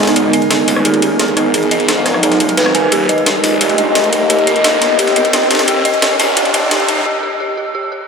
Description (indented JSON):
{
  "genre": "dark technical drum and bass",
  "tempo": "174 BPM",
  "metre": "4/4",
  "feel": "straight",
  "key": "unclear",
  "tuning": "A4 = 441 Hz",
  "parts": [
    { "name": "dark analog pad", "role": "sustained chords", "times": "0.0-7.0 s", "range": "G#3 to D#5", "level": "-18 LUFS", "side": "left 1 dB", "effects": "chorus, phaser" },
    { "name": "dark detuned synth bell", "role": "arpeggios", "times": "0.0-8.0 s", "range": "G4 to G#5", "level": "-17 LUFS", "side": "equal", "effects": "chorus, phaser, tape echo" },
    { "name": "phased detuned saw bass", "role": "bass", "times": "0.0-7.0 s", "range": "D#1 to A#1", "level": "-19 LUFS", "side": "equal", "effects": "phaser, overdrive, high-pass filter" },
    { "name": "breakbeat sampler-style drum kit", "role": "drums", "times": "0.0-7.0 s", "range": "hi-hat, ride cymbal, snare drum", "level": "-19 LUFS", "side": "equal", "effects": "high-pass filter on cymbals, high-pass filter on snare, high-pass filter on hats, high-pass filter on room" },
    { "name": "riser", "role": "sound effects", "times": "0.2-7.1 s", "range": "none", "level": "-21 LUFS", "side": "equal", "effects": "none" },
    { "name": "ethereal airy pad", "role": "texture", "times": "0.0-7.1 s", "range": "B3 to G#5", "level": "-19 LUFS", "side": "right 2 dB", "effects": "ensemble chorus, built-in reverb" },
    { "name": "drum and bass drum kit", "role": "drums", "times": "0.2-7.0 s", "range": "hi-hat, rim click", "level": "-18 LUFS", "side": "left 1 dB", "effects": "none" }
  ],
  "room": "wet cathedral reverb, RT60 5.5 s",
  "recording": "dreamy mix soaked in reverb, high-pass filter",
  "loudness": "-11 LUFS",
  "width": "side -5 dB against mid",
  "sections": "0.0-8.1 A section",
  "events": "build-up 0.0-8.1; riser 0.2-7.1; break 7.1-8.1",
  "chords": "0.0 G#m; 2.9 D#"
}